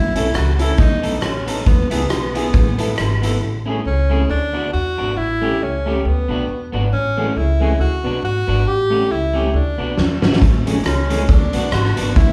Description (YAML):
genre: ska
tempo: 137 BPM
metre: 4/4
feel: swing 57% on 8ths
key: A major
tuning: A4 = 440 Hz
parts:
  - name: clear tenor saxophone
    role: melody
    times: 0.0-12.3 s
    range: B3 to G4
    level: -24 LUFS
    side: equal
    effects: none
  - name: upright bass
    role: bass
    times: 0.0-12.3 s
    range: G#1 to E2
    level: -23 LUFS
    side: equal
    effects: none
  - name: electric guitar at the edge of break-up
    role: accompaniment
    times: 0.2-12.1 s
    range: E3 to A4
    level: -30 LUFS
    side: equal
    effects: tape echo
  - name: warm upright piano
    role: stabs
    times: 0.2-12.1 s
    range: A3 to A4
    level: -28 LUFS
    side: equal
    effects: none
  - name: raw garage drum kit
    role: drums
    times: 0.2-3.3, 10.0-12.3 s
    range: hi-hat, kick drum, rim click, snare drum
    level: -19 LUFS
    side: equal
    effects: none
  - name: group handclap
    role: percussion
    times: 0.3-3.1, 10.8-11.8 s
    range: none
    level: barely audible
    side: none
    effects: none
room: wet large studio reverb, RT60 0.8 s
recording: band playing live in one room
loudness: -18 LUFS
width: mono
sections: 0.0-3.4 A section; 3.4-12.3 B section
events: drum fill 10.0-10.4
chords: 0.0 A; 0.8 B7; 1.7 E; 2.5 Asus2; 3.4 Amaj7; 4.3 D6; 5.2 A7; 6.0 D6; 6.9 Amaj7; 7.8 D6; 8.7 A7; 9.5 D6; 10.4 Amaj7; 11.3 D6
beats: 0.36 0.80 1.23 | 1.67 2.11 2.54 2.98 | 3.42 3.86 4.29 4.73 | 5.17 5.61 6.04 6.48 | 6.92 7.36 7.79 8.23 | 8.67 9.10 9.54 9.98 | 10.41 10.85 11.29 11.72 | 12.16